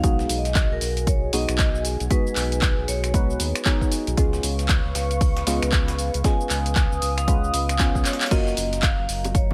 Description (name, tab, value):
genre	deep house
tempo	116 BPM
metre	4/4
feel	swing 61% on 16ths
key	unclear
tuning	A4 = 440 Hz
part	vibraphone with medium mallets	melody	0.0-9.5 s	A#4 to G#5	-33 LUFS	equal	tape echo
part	dark analog pad	sustained chords	0.3-9.5 s	F#3 to D#6	-34 LUFS	equal	chorus, phaser, sidechain pumping
part	deep mellow chord stab	stabs	0.0-9.5 s	G#3 to B4	-32 LUFS	equal	chorus, sidechain pumping
part	round analog bass	bass	0.0-9.5 s	F#1 to D#2	-29 LUFS	equal	sidechain pumping
part	breakbeat sampler-style drum kit	drums	0.0-9.5 s	hi-hat, snare drum, tambourine	-39 LUFS	equal	none
part	electronic kick drum	drums	0.0-9.5 s	none	-24 LUFS	equal	overdrive
part	punchy analog drum machine	drums	0.0-9.5 s	crash cymbal, finger snaps, handclaps, hi-hat, shaker	-30 LUFS	equal	none
part	bongos and congas	percussion	9.2-9.5 s	none	-33 LUFS	equal	sidechain pumping on perc
room	little or no reverb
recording	none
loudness	-22 LUFS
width	mono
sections	0.0-9.5 A section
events	drum fill 8.1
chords	0.0 G#m7/B; 4.2 C#7; 8.3 F#maj7